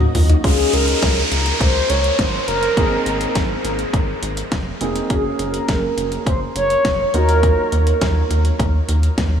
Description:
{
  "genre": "synth-pop",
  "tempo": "103 BPM",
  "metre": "4/4",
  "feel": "straight",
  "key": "unclear",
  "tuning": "A4 = 440 Hz",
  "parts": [
    { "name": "dark grand piano", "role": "accompaniment", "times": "0.0-9.4 s", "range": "Ab3 to Bb4", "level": "-25 LUFS", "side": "right 2 dB", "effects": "wide subtle chorus" },
    { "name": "rubbery square bass", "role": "bass", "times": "0.0-9.4 s", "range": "F1 to Eb2", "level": "-20 LUFS", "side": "equal", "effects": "none" },
    { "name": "pop drum kit", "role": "drums", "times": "0.0-9.3 s", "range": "hi-hat, kick drum, snare drum, toms", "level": "-22 LUFS", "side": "equal", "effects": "overdrive" },
    { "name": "mellow horn-like synth lead", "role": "melody", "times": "0.4-8.3 s", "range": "Ab4 to Db5", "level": "-21 LUFS", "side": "equal", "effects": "chorus, tape echo" },
    { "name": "downlifter", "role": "sound effects", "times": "0.4-5.1 s", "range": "none", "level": "-24 LUFS", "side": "right 1 dB", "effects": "none" }
  ],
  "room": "moderate huge ambient reverb, RT60 6.9 s",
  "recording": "dreamy mix soaked in reverb",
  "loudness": "-15 LUFS",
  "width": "side -8 dB against mid",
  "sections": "0.4-9.4 A section",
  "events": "drum fill 0.0-0.4",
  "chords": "0.4 Db; 2.8 Abadd9; 5.1 Gbadd9; 7.1 Ebmadd9",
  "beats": "| 0.44 1.02 1.61 2.19 | 2.77 3.35 3.94 4.52 | 5.10 5.68 6.27 6.85 | 7.43 8.01 8.60 9.18"
}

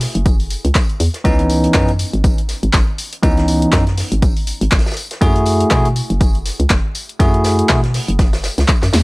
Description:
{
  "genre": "deep house",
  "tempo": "121 BPM",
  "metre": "4/4",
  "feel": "swing 57% on 16ths",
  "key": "C# minor",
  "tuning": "A4 = 440 Hz",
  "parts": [
    { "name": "hollow knocking FM bass", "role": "bass", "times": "0.0-9.0 s", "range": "F#1 to B2", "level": "-17 LUFS", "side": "equal", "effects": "transformer saturation, sidechain pumping" },
    { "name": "punchy analog drum machine", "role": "drums", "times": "0.0-9.0 s", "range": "handclaps, hi-hat, snare drum", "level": "-22 LUFS", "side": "left 1 dB", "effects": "overdrive" },
    { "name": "warm soul drum kit", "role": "drums", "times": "0.0-9.0 s", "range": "hi-hat, snare drum, tambourine", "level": "-29 LUFS", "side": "equal", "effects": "sidechain pumping on hats, high-pass filter on hats, high-pass filter on snare, sidechain pumping on perc, high-pass filter on perc, high-pass filter on room" },
    { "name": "electronic kick drum", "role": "drums", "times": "0.3-8.8 s", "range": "none", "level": "-15 LUFS", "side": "equal", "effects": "overdrive" },
    { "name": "bell-like tine electric piano", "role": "stabs", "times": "1.2-7.8 s", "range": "E3 to G#4", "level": "-19 LUFS", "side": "equal", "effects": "vintage 12-bit sampler grit, sidechain pumping, analog delay" }
  ],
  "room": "little or no reverb",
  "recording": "transformer saturation",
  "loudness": "-13 LUFS",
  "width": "side -25 dB against mid",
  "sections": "0.0-9.0 A section",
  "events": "none",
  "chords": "0.0 N.C.; 1.2 C#m9; 5.2 F#m9",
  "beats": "0.26 0.75 | 1.25 1.74 2.24 2.74 | 3.23 3.73 4.22 4.72 | 5.21 5.71 6.21 6.70 | 7.20 7.70 8.19 8.69"
}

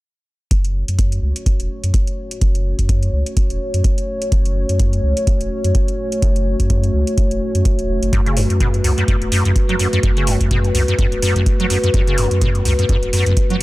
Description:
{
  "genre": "acid house",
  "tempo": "126 BPM",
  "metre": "4/4",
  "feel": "swing 57% on 16ths",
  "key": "F# minor",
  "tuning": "A4 = 440 Hz",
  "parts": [
    { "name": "dark analog pad", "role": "sustained chords", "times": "0.5-13.6 s", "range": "A3 to C#5", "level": "-22 LUFS", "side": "left 1 dB", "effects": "wide subtle chorus, sidechain pumping" },
    { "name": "warm sub bass", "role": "bass", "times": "0.5-13.3 s", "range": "E1 to F#2", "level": "-19 LUFS", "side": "equal", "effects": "tube saturation, sidechain pumping" },
    { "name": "electronic hi-hat", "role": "drums", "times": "0.5-13.6 s", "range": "none", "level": "-26 LUFS", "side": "right 1 dB", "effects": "none" },
    { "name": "electronic kick drum", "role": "drums", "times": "0.5-13.5 s", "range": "none", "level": "-17 LUFS", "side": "equal", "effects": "none" },
    { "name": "acid bass, square", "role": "riff", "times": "8.1-13.6 s", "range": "F#1 to F#3", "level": "-19 LUFS", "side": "equal", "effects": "overdrive, ensemble chorus, analog delay" }
  ],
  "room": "digital ambience",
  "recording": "echo-heavy mix",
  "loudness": "-15 LUFS",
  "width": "side -18 dB against mid",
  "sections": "0.5-13.6 A section",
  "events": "none",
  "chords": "0.5 F#m",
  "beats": "| 0.51 0.99 1.46 1.94 | 2.42 2.89 3.37 3.84 | 4.32 4.80 5.27 5.75 | 6.22 6.70 7.18 7.65 | 8.13 8.61 9.08 9.56 | 10.03 10.51 10.99 11.46 | 11.94 12.41 12.89 13.37"
}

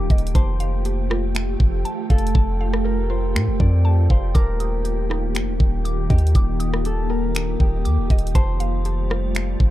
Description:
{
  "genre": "hip hop, atmospheric cloud-rap",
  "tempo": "120 BPM",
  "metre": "4/4",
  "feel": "half-time",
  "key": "unclear",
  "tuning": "A4 = 440 Hz",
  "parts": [
    { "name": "concert harp", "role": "melody", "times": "0.0-9.7 s", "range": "G4 to D5", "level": "-32 LUFS", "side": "left 3 dB", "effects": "low-pass filter, digital delay" },
    { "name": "glassy FM pad", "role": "sustained chords", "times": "0.0-9.7 s", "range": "Eb3 to G4", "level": "-28 LUFS", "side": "equal", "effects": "ensemble chorus, built-in reverb, sidechain pumping" },
    { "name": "mallet-like synth pluck", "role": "arpeggios", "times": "0.0-9.7 s", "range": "Eb3 to Eb6", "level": "-33 LUFS", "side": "right 2 dB", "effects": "chorus, phaser, low-pass filter, digital delay" },
    { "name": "long sustained 808-style bass", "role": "bass", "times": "0.0-9.7 s", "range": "Eb1 to A2", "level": "-21 LUFS", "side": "equal", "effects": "none" },
    { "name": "wind-like tuned noise texture", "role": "texture", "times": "0.0-9.7 s", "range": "D4 to Eb6", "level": "-38 LUFS", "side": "right 4 dB", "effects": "built-in reverb" },
    { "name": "trap drum kit", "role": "drums", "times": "0.1-9.7 s", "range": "finger snaps, hi-hat, kick drum, rim click", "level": "-18 LUFS", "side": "equal", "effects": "none" }
  ],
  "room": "little or no reverb",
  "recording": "dark, warm production",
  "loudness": "-18 LUFS",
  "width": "side -15 dB against mid",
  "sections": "0.0-9.7 A section",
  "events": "hi-hats muted 2.4-4.4",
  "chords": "0.4 Fadd9; 4.4 Ebmaj7; 8.4 Fadd9",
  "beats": "| 0.35 0.85 1.35 1.85 | 2.35 2.85 3.35 3.85 | 4.35 4.85 5.35 5.85 | 6.35 6.85 7.35 7.85 | 8.35 8.85 9.35"
}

